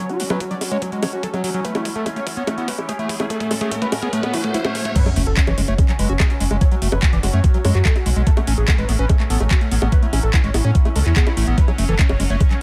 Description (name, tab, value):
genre	psychedelic trance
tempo	145 BPM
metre	4/4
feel	straight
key	F# minor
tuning	A4 = 440 Hz
part	unison lead	melody	0.0-12.6 s	A3 to D5	-29 LUFS	equal	phaser, sidechain pumping, delay
part	bubbling stepped-filter texture	sustained chords	0.0-12.6 s	F#3 to C#4	-34 LUFS	equal	chorus, built-in reverb, sidechain pumping
part	overdriven acid bass	riff	0.0-12.5 s	E3 to F#4	-28 LUFS	equal	distortion, sidechain pumping, tape echo
part	riser, swell and sub drop	sound effects	1.9-6.6 s	none	-32 LUFS	equal	none
part	garage drum kit	drums	0.1-12.6 s	bongos, crash cymbal, handclaps, hi-hat	-28 LUFS	equal	overdrive
part	electronic kick drum	drums	0.4-12.5 s	none	-19 LUFS	equal	overdrive, high-pass filter on kick
part	round analog bass	bass	5.2-12.4 s	F#1 to A2	-21 LUFS	equal	none
room	light reverb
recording	none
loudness	-19 LUFS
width	mono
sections	0.0-5.0 A section; 5.0-12.6 B section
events	build-up 0.0-5.0; drum fill 0.0-5.0; filter sweep on acid bass 0.0-5.0; filter sweep on synth texture 0.0-5.0; riser 1.9-5.0; swell 4.1-5.0; drop 5.0-12.6; impact 5.0-6.6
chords	0.0 F#5; 8.3 A5; 11.6 F#5